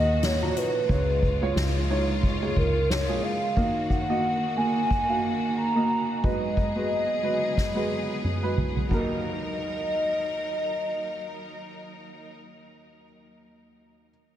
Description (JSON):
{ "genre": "piano-driven pop", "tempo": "90 BPM", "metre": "4/4", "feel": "swing 56% on 16ths", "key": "Eb minor", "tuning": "A4 = 439 Hz", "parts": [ { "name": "hollow clarinet-like synth lead", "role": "melody", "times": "0.0-12.3 s", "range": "Bb4 to Bb5", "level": "-28 LUFS", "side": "equal", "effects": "chorus, analog delay" }, { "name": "warm upright piano", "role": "accompaniment", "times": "0.0-14.1 s", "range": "Eb2 to Bb5", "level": "-28 LUFS", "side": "right 1 dB", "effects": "analog chorus" }, { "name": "clear studio string section", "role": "sustained chords", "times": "0.0-12.3 s", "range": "Bb2 to Bb4", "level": "-35 LUFS", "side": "left 1 dB", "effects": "none" }, { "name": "vintage muted fingered electric bass", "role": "bass", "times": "0.0-3.2 s", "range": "Db2 to Eb2", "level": "-27 LUFS", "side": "equal", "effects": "none" }, { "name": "soft-mallet drum kit", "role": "drums", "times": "0.2-9.1 s", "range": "china cymbal, hi-hat, kick drum, snare drum, toms", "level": "-29 LUFS", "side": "equal", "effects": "none" } ], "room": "moderate huge ambient reverb, RT60 5.1 s", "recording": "dreamy mix soaked in reverb", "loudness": "-23 LUFS", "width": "side -11 dB against mid", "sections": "0.0-8.9 A section; 8.9-11.6 B section", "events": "drum fill 7.6-8.9", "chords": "0.0 Ebm; 0.9 Db; 3.6 Ebm; 6.2 Abm7; 8.9 Ebm" }